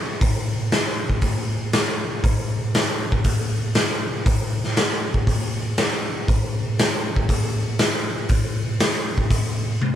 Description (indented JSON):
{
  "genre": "rock",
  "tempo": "119 BPM",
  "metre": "4/4",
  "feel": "straight",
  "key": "none",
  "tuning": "none",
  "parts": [
    { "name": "raw garage drum kit", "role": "drums", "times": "0.2-9.9 s", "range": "hi-hat, kick drum, snare drum, toms", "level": "-19 LUFS", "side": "equal", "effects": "none" }
  ],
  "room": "little or no reverb",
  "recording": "band playing live in one room",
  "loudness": "-19 LUFS",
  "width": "side -10 dB against mid",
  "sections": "0.0-10.0 A section",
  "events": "none",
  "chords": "none"
}